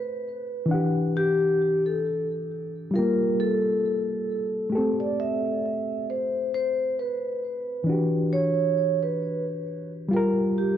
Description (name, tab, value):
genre	hip hop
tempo	67 BPM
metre	4/4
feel	swing 55% on 16ths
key	A dorian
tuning	A4 = 437 Hz
part	vibraphone with soft mallets	melody	0.0-10.8 s	G4 to E5	-26 LUFS	moving between left 4 dB and right 5 dB	auto-pan, low-pass filter, tape echo
part	reed electric piano	accompaniment	0.0-10.8 s	E3 to F#5	-26 LUFS	left 1 dB	cassette tape, low-pass filter
room	wet lush hall reverb, RT60 1.7 s, small room reverb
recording	dreamy mix soaked in reverb, cassette tape, nothing above 10.8 kHz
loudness	-23 LUFS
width	side -10 dB against mid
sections	0.0-10.8 A section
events	none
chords	0.0 Am9; 0.7 Em9; 2.9 Gm9; 4.7 Am9; 7.9 Em9; 10.1 Gm7